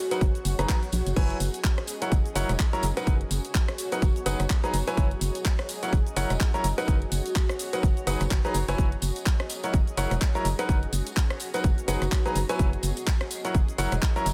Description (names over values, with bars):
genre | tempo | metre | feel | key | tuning
piano house | 126 BPM | 4/4 | swing 58% on 16ths | F# mixolydian | A4 = 442 Hz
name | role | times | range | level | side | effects
granular cloud pad | texture | 0.0-14.3 s | F#4 to D#5 | -38 LUFS | equal | built-in reverb, sidechain pumping
clear grand piano | riff | 0.1-14.3 s | F#3 to A#5 | -32 LUFS | equal | sidechain pumping, tape echo
house drum kit | drums | 0.1-14.3 s | crash cymbal, handclaps, hi-hat, rim click, shaker | -36 LUFS | equal | none
tambourine | percussion | 0.1-14.3 s | none | -45 LUFS | equal | none
organ-like FM bass | bass | 0.2-14.3 s | E1 to A#1 | -30 LUFS | equal | sidechain pumping
electronic kick drum | drums | 0.2-14.1 s | none | -26 LUFS | equal | none
room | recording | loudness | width
light reverb, digital ambience | none | -26 LUFS | mono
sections
0.0-14.3 A section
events
none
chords
0.0 Bmaj7/F#; 1.2 C#m7/F#; 1.9 F#7; 3.1 B5/F#; 4.0 G#m7/F#; 5.0 C#5/F#; 5.7 F#7; 6.9 B5/F#; 7.8 G#m7/F#; 8.8 C#5/F#; 9.5 F#7; 10.7 B5/F#; 11.6 G#m7/F#; 12.6 C#5/F#; 13.3 F#7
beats
0.21 0.69 | 1.17 1.64 2.12 2.59 | 3.07 3.55 4.02 4.50 | 4.97 5.45 5.93 6.40 | 6.88 7.36 7.83 8.31 | 8.78 9.26 9.74 10.21 | 10.69 11.16 11.64 12.12 | 12.59 13.07 13.55 14.02